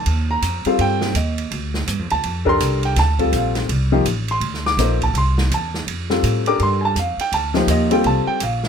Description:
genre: modal jazz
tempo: 165 BPM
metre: 4/4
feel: swing 63% on 8ths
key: D phrygian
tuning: A4 = 440 Hz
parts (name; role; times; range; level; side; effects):
- warm baby grand piano; accompaniment; 0.0-8.6 s; F3 to D6; -19 LUFS; left 2 dB; none
- upright bass; bass; 0.0-8.7 s; A1 to A2; -20 LUFS; right 1 dB; none
- open jazz drum kit; drums; 0.1-8.7 s; hi-hat, kick drum, ride cymbal, snare drum; -26 LUFS; right 3 dB; none
room: little or no reverb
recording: close, detailed microphones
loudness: -17 LUFS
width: side -7 dB against mid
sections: 0.0-8.7 A section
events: none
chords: 0.0 Cm7; 1.5 Dm7; 7.3 Cm7

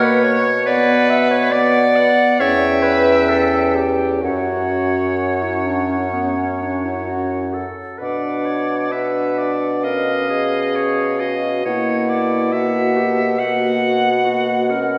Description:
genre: classical, slow romantic movement for wind quintet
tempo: 62-70 BPM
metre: 4/4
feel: rubato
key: unclear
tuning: A4 = 440 Hz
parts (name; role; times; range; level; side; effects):
- concert flute; melody; 0.0-14.9 s; E#5 to G5; -28 LUFS; equal; none
- bright oboe; second line; 0.0-14.9 s; B4 to F#5; -25 LUFS; equal; none
- mellow French horn; accompaniment; 0.0-15.0 s; A#3 to D4; -26 LUFS; equal; none
- warm clarinet; accompaniment; 0.0-15.0 s; B3 to E5; -23 LUFS; equal; none
- mellow bassoon; bass; 0.0-15.0 s; E2 to B2; -23 LUFS; equal; none
room: wet scoring stage reverb, RT60 1.9 s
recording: heard from further back in the room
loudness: -18 LUFS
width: mono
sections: 0.0-15.0 A section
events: none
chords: 0.0 F#/B; 0.7 Bm; 2.4 C#dim/E; 4.2 F#5; 8.0 Bm; 9.8 C#7/B; 11.7 F#/B

